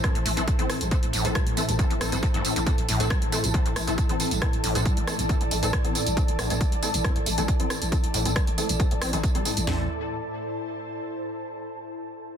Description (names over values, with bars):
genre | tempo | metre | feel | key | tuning
driving peak-time techno | 137 BPM | 4/4 | straight | A minor | A4 = 441 Hz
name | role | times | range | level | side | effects
overdriven acid bass | riff | 0.0-9.9 s | G2 to C4 | -32 LUFS | equal | wide subtle chorus, sidechain pumping, ping-pong delay
rave stab | stabs | 0.0-9.8 s | E3 to A4 | -32 LUFS | left 3 dB | chorus, built-in reverb, sidechain pumping, ping-pong delay
growling 808-style bass | bass | 0.0-9.9 s | A1 | -32 LUFS | equal | overdrive, sidechain pumping, low-pass filter
swarming drone | drone | 0.0-9.7 s | A2 | -36 LUFS | right 1 dB | built-in reverb, sidechain pumping
punchy analog drum machine | drums | 0.0-9.7 s | hi-hat, rim click, tambourine | -29 LUFS | right 2 dB | sidechain pumping on hats, sidechain pumping on perc, soft clipping on snare
techno drum kit | drums | 0.0-9.8 s | kick drum, snare drum, toms | -25 LUFS | equal | overdrive
ethereal airy pad | texture | 0.0-11.4 s | E4 to A5 | -32 LUFS | equal | ensemble chorus, built-in reverb, sidechain pumping
room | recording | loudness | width
light reverb | dense, heavily limited modern master | -22 LUFS | side -8 dB against mid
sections
0.0-9.7 A section; 9.7-11.4 B section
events
filter sweep on acid bass 0.0-9.7; filter sweep on synth stab 0.0-9.7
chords
0.0 Am